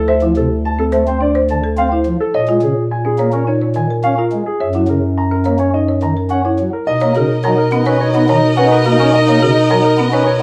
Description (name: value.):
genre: classical, minimalist pattern music.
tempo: 106 BPM.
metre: 4/4.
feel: straight.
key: B major from 6.9 s.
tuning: A4 = 439 Hz.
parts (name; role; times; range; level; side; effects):
dark concert grand piano; melody; 0.0-10.4 s; G#4 to A#5; -21 LUFS; equal; none.
mellow bass clarinet; bass; 0.0-10.4 s; D2 to B2; -20 LUFS; equal; none.
folk marimba with medium mallets; arpeggios; 0.1-10.3 s; C4 to C#5; -21 LUFS; equal; none.
pipe organ, flutes; accompaniment; 0.2-10.2 s; C3 to C#4; -22 LUFS; equal; none.
clear French horn; second line; 6.9-10.4 s; D#4; -19 LUFS; equal; none.
rich studio violin section; sustained chords; 6.9-10.4 s; A#4 to D#5; -23 LUFS; equal; none.
room: light reverb.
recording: none.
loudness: -15 LUFS.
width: mono.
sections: 0.0-6.9 A section; 6.9-10.4 B section.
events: none.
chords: 0.0 Dm7; 2.3 A#m7; 4.6 F#7; 6.9 Bmaj7.